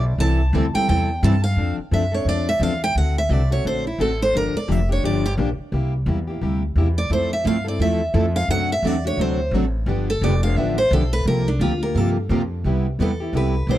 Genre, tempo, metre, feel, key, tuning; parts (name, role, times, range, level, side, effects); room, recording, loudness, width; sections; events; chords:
acoustic string swing (jazz manouche); 173 BPM; 4/4; swing 60% on 8ths; F major; A4 = 440 Hz
picked steel-string acoustic guitar; melody; 0.0-13.8 s; D4 to A5; -23 LUFS; right 1 dB
upright bass; bass; 0.0-13.8 s; F1 to G2; -21 LUFS; equal
picked plugged-in steel-string acoustic guitar; accompaniment; 0.2-13.8 s; C3 to A4; -25 LUFS; left 3 dB
picked steel-string acoustic guitar; accompaniment; 0.2-1.3, 7.1-13.8 s; C3 to A4; -26 LUFS; right 6 dB
little or no reverb; dry, close 1970s-style studio recording; -18 LUFS; side -13 dB against mid
0.0-1.6 A section; 1.6-12.6 A section; 12.6-13.8 A section
steel-string acoustic guitar solo 0.0-12.6, 12.6-13.8
0.2 C6; 1.6 F6; 3.0 D7; 4.3 Gm7; 5.7 C7; 7.1 Fmaj9; 8.5 D7; 9.9 G7; 11.3 C9sus4; 12.6 Cmaj7